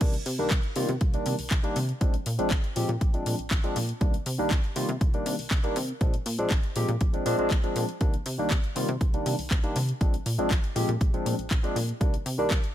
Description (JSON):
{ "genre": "filtered disco house", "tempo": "120 BPM", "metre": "4/4", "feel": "straight", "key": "C minor", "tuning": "A4 = 440 Hz", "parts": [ { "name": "barky tine electric piano", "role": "accompaniment", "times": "0.0-12.5 s", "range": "Eb3 to G4", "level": "-30 LUFS", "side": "equal", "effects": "phaser, sidechain pumping, low-pass filter" }, { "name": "plucky analog bass", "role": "bass", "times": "0.0-12.6 s", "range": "Bb1 to C3", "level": "-31 LUFS", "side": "equal", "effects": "sidechain pumping, low-pass filter" }, { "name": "electronic kick drum", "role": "drums", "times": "0.0-12.6 s", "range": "none", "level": "-25 LUFS", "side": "equal", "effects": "overdrive, small room ambience" }, { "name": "house drum kit", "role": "drums", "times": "0.0-12.7 s", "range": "crash cymbal, handclaps, hi-hat", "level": "-34 LUFS", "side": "left 1 dB", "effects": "overdrive, sidechain pumping on hats, small room ambience, sidechain pumping on cymbals" } ], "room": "little or no reverb", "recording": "none", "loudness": "-24 LUFS", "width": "side -12 dB against mid", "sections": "0.0-12.7 A section", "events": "drop 0.0-12.7", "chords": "0.0 Cm7; 2.0 Bb9; 4.0 Cm7; 6.0 Bb9; 8.0 Cm7; 10.0 Bb9; 12.0 Cm7" }